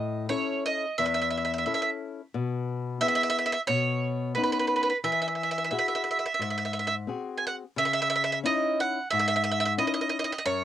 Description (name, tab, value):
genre	italian folk, Italian serenade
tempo	89 BPM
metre	4/4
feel	straight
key	E major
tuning	A4 = 439 Hz
part	bowl-back mandolin	melody	0.0-10.6 s	B4 to G#5	-26 LUFS	right 3 dB	cassette tape
part	nylon-string guitar	accompaniment	0.0-10.6 s	E2 to A4	-30 LUFS	left 6 dB	cassette tape
room	wet booth ambience, RT60 0.2 s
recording	home recording on cassette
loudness	-25 LUFS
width	side -11 dB against mid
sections	0.0-7.8 A section; 7.8-10.6 B section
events	none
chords	0.0 A; 2.3 E/B; 3.7 Badd9; 5.0 Eadd9; 6.4 G#7; 7.8 C#madd9